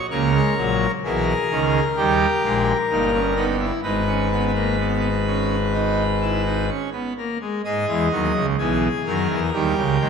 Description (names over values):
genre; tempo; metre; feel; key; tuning
classical, baroque-style 4-part fugue for pipe organ; 64 BPM; 4/4; straight; G# minor; A4 = 440 Hz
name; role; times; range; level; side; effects
pipe organ, full organ; solo; 0.0-10.1 s; G1 to D#5; -19 LUFS; equal; none
room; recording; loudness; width
wet scoring stage reverb, RT60 1.9 s; none; -19 LUFS; side -6 dB against mid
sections
0.1-7.6 A section; 7.6-10.1 B section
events
none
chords
0.1 A#dim; 2.0 D#; 3.8 G#m; 9.5 D#